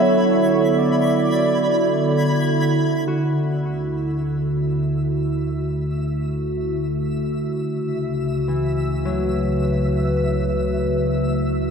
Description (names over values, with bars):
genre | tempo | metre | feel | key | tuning
ambient | free time | none | none | D lydian | A4 = 440 Hz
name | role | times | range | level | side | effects
warm velvety synth lead | melody | 0.0-2.3 s | C#5 to D5 | -23 LUFS | equal | chorus, tape echo
warbly tape-like pad | sustained chords | 0.0-11.7 s | C#3 to E5 | -20 LUFS | right 1 dB | chorus, built-in reverb
Celtic harp | arpeggios | 0.0-11.7 s | E3 to B5 | -28 LUFS | left 1 dB | tape echo
overtone-sweeping drone | drone | 0.0-3.2 s | D3 | -30 LUFS | left 2 dB | none
twinkling granular texture | texture | 0.0-11.7 s | E5 to G#6 | -33 LUFS | equal | built-in reverb
warm sub bass | bass | 3.1-11.7 s | C#2 to D2 | -30 LUFS | left 1 dB | none
room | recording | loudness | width
wet cathedral reverb, RT60 5.5 s | in a vast, echoing space | -18 LUFS | side -6 dB against mid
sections
0.0-3.1 A section; 3.1-11.7 B section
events
fade-in on sub bass 3.1-11.7; fade-in on synth texture 3.1-11.7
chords
0.0 Bm11/D; 7.7 A69/C#